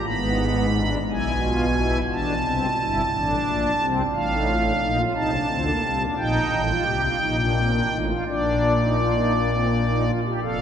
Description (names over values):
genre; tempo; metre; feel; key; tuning
classical, baroque-style 3-part fugue for pipe organ; 55-60 BPM (dotted quarters); 12/8; straight; Bb major; A4 = 440 Hz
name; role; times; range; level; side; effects
pipe organ, strings celeste; solo; 0.0-10.6 s; F1 to B5; -20 LUFS; equal; none
room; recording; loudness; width
wet cathedral reverb, RT60 6.5 s; recorded in a church or concert hall; -20 LUFS; side -8 dB against mid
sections
0.0-10.6 A section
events
none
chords
0.1 E/G#; 2.1 Am; 4.1 F/A; 6.2 Eb; 8.3 Bb